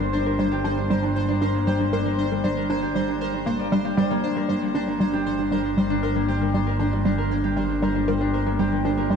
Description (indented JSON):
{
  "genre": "ambient, sequencer-driven space music",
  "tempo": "117 BPM",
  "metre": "4/4",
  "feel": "straight",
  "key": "G minor",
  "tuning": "A4 = 444 Hz",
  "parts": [
    { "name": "concert harp", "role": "arpeggios", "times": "0.0-9.2 s", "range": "G3 to D5", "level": "-24 LUFS", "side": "moving between left 4 dB and right 3 dB", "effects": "auto-pan, tape echo" },
    { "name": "analog drone", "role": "bass", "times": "0.0-9.2 s", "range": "G1", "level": "-28 LUFS", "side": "equal", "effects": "chorus" },
    { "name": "pulsing gated texture", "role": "texture", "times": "0.0-9.2 s", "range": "C5", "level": "-32 LUFS", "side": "right 1 dB", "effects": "chorus, built-in reverb" },
    { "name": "hollow square pluck", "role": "riff", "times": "0.4-9.2 s", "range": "G3 to Bb4", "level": "-26 LUFS", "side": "right 1 dB", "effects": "analog chorus, tape echo" }
  ],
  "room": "wet cathedral reverb, RT60 5.0 s",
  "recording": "in a vast, echoing space, cassette tape",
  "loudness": "-21 LUFS",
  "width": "side -6 dB against mid",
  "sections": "0.0-9.2 A section",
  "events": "none",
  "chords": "0.0 Gm"
}